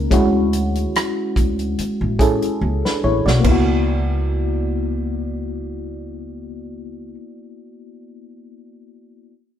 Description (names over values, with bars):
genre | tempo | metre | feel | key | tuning
R&B, neo-soul | 72 BPM | 4/4 | swing 54% on 16ths | C# dorian | A4 = 440 Hz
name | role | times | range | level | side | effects
FM electric piano with auto-pan | accompaniment | 0.0-9.3 s | G#3 to D5 | -21 LUFS | left 1 dB | none
upright bass | bass | 0.0-7.1 s | A1 to D2 | -22 LUFS | equal | none
warm soul drum kit | drums | 0.1-3.7 s | crash cymbal, hi-hat, kick drum, rim click, snare drum, toms | -21 LUFS | right 1 dB | none
room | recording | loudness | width
moderate stone room reverb, RT60 1.1 s | band playing live in one room | -17 LUFS | side -10 dB against mid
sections
0.0-3.4 A section; 3.4-6.8 B section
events
drum fill 2.6-3.4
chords
0.1 Dmaj7; 3.4 C#m7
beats
| 0.11 0.94 1.78 2.61 | 3.44 4.28 5.11 5.94